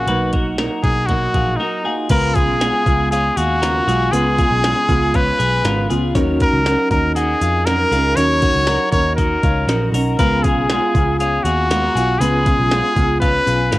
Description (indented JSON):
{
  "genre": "jangly indie pop",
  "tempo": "119 BPM",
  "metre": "4/4",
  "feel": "straight",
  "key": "Db mixolydian",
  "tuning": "A4 = 439 Hz",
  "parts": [
    { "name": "bright trumpet", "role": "melody", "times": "0.0-13.8 s", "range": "Eb4 to Db5", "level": "-18 LUFS", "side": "left 1 dB", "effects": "cassette tape" },
    { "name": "fingerpicked steel-string acoustic guitar", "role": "accompaniment", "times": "0.0-13.8 s", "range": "Cb3 to Bb4", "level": "-22 LUFS", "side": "right 4 dB", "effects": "cassette tape" },
    { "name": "twelve-string electric guitar", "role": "arpeggios", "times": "0.0-13.8 s", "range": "Db4 to Db5", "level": "-25 LUFS", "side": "left 3 dB", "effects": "cassette tape" },
    { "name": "vintage muted picked electric bass", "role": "bass", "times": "0.0-13.8 s", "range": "Ab1 to F2", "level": "-21 LUFS", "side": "equal", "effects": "none" },
    { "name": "minimal click drum kit", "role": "drums", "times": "0.1-13.8 s", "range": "crash cymbal, hi-hat, kick drum, snare drum", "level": "-21 LUFS", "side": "equal", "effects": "none" },
    { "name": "reed electric piano", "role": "accompaniment", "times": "2.1-13.8 s", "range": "Cb4 to F5", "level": "-27 LUFS", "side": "left 4 dB", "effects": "fast tremolo, cassette tape" }
  ],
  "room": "light reverb",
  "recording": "home recording on cassette",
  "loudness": "-14 LUFS",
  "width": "side -17 dB against mid",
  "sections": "0.0-2.1 A section; 2.1-13.8 B section",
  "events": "break 1.6-2.1",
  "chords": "0.1 Cbmaj7; 2.1 Db7; 6.1 Ebm7; 10.2 Db7"
}